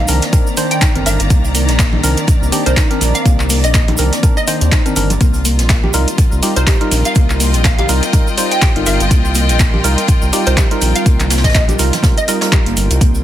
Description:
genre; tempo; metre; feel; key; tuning
deep house; 123 BPM; 4/4; swing 57% on 16ths; unclear; A4 = 439 Hz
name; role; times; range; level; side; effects
hollow square pluck; melody; 0.0-12.4 s; C5 to G5; -22 LUFS; right 1 dB; ensemble chorus, tape echo
warbly tape-like pad; sustained chords; 0.0-13.2 s; G3 to D5; -25 LUFS; left 1 dB; chorus, built-in reverb, sidechain pumping
soft round pluck; arpeggios; 0.0-13.1 s; Bb3 to G4; -25 LUFS; left 3 dB; wide subtle chorus, sidechain pumping, tape echo
percussive organ stab; stabs; 0.0-13.0 s; Eb3 to C5; -21 LUFS; right 1 dB; chorus, sidechain pumping, tape echo
round analog bass; bass; 0.0-13.2 s; G1 to Eb2; -16 LUFS; equal; tube saturation, sidechain pumping
rich studio string section; texture; 0.0-13.2 s; Eb3 to Bb5; -24 LUFS; left 2 dB; sidechain pumping
deep house drum kit; drums; 0.1-13.1 s; handclaps, hi-hat; -20 LUFS; equal; none
jazz brush drum kit; drums; 0.1-13.2 s; hi-hat, snare drum; -26 LUFS; right 3 dB; none
tube shaker; percussion; 0.1-13.2 s; none; -25 LUFS; right 2 dB; none
electronic kick drum; drums; 0.3-13.1 s; none; -13 LUFS; equal; none
congas; percussion; 1.9-12.1 s; none; -25 LUFS; right 3 dB; none
room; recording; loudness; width
light reverb, small room reverb; dense, heavily limited modern master; -11 LUFS; side -12 dB against mid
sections
0.0-13.2 A section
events
none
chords
0.0 Cm9; 5.2 Ebadd9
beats
0.33 0.82 | 1.30 1.79 2.28 2.77 | 3.25 3.74 4.23 4.72 | 5.21 5.69 6.18 6.67 | 7.16 7.65 8.13 8.62 | 9.11 9.60 10.09 10.57 | 11.06 11.55 12.04 12.52 | 13.01

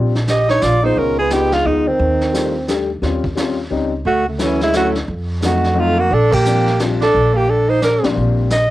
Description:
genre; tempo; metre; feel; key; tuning
jazz, small-group swing and bop; 175 BPM; 3/4; swing 63% on 8ths; Bb major; A4 = 439 Hz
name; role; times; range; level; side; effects
warm upright piano; accompaniment; 0.0-8.5 s; Bb2 to G4; -21 LUFS; left 5 dB; none
upright bass; bass; 0.0-8.7 s; Bb1 to F2; -20 LUFS; equal; transformer saturation
vintage brush drum kit; drums; 0.2-8.7 s; brushed snare drum, hi-hat, kick drum, ride cymbal, snare drum; -25 LUFS; equal; cassette tape
clear alto saxophone; melody; 0.3-8.7 s; A3 to Eb5; -16 LUFS; equal; cassette tape
breathy tenor saxophone; second line; 0.3-8.1 s; C#3 to G4; -21 LUFS; right 6 dB; none
room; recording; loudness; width
moderate studio reverb, RT60 0.5 s; home recording on cassette; -14 LUFS; side -16 dB against mid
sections
0.0-8.2 A section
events
band accent 6.3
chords
0.0 Bb6; 1.0 Db9; 2.0 Ebmaj9#11; 3.0 Eb13; 4.1 Dmaj9; 5.1 F7b9; 6.1 Bb6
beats
0.28 0.62 | 0.96 1.31 1.65 | 1.99 2.33 2.68 | 3.02 3.37 3.71 | 4.05 4.39 4.74 | 5.08 5.42 5.76 | 6.11 6.45 6.79 | 7.14 7.48 7.82 | 8.16 8.51

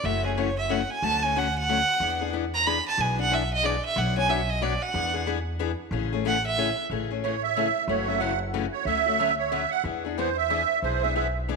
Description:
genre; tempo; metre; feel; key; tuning
acoustic string swing (jazz manouche); 184 BPM; 3/4; swing 61% on 8ths; A major; A4 = 442 Hz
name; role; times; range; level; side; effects
bright violin; melody; 0.0-6.8 s; G#4 to B5; -25 LUFS; right 3 dB; none
picked steel-string acoustic guitar; accompaniment; 0.0-11.6 s; B2 to C#5; -30 LUFS; left 12 dB; none
upright bass; bass; 0.0-11.6 s; F#1 to E2; -31 LUFS; equal; none
musette accordion; second line; 7.2-11.3 s; C5 to F#5; -25 LUFS; right 8 dB; none
room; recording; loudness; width
wet echo chamber reverb, RT60 2.2 s; 1960s-style stereo with parts hard left and right; -23 LUFS; side -4 dB against mid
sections
0.0-6.9 A section; 6.9-11.6 A section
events
violin solo 0.0-6.9; accordion solo 6.9-11.6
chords
0.0 F#m7; 1.0 Dmaj7; 2.0 E7; 4.0 Bmadd9; 4.9 E7; 5.9 Amaj7; 7.9 F#m7; 8.9 Dmaj7; 9.8 E7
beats
| 0.04 0.37 0.69 | 1.02 1.35 1.67 | 2.00 2.33 2.65 | 2.98 3.31 3.63 | 3.96 4.29 4.61 | 4.94 5.27 5.59 | 5.92 6.25 6.57 | 6.90 7.23 7.55 | 7.88 8.21 8.53 | 8.86 9.19 9.52 | 9.84 10.17 10.49 | 10.82 11.15 11.48

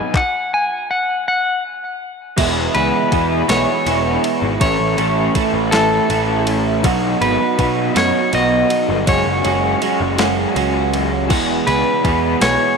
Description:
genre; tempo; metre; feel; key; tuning
indie rock; 54 BPM (dotted quarters); 6/8; straight; E major; A4 = 437 Hz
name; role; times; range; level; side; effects
clean electric guitar; melody; 0.0-12.8 s; A4 to G#5; -19 LUFS; left 2 dB; spring reverb, tape echo
overdriven electric guitar; riff; 0.0-12.8 s; E2 to G#4; -19 LUFS; right 14 dB; analog chorus, tape echo
raw garage guitar; riff; 0.0-12.8 s; D#3 to A4; -22 LUFS; left 16 dB; overdrive, tremolo
clean 12-bit digital drum machine; drums; 0.1-12.6 s; crash cymbal, handclaps, kick drum, ride cymbal, snare drum; -23 LUFS; left 1 dB; overdrive
fuzz picked electric bass; bass; 2.4-12.6 s; E1 to B2; -22 LUFS; left 1 dB; overdrive
room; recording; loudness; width
light reverb, digital ambience; 1960s-style stereo with parts hard left and right; -14 LUFS; side -5 dB against mid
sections
0.0-2.4 A section; 2.4-12.8 B section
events
clean electric guitar solo 0.0-2.4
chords
0.1 N.C.; 2.4 E6; 4.6 A; 6.8 B; 9.1 F#sus2; 11.3 E6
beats
| 0.14 1.25 | 2.37 3.49 | 4.61 5.73 | 6.84 7.96 | 9.07 10.19 | 11.30 12.41

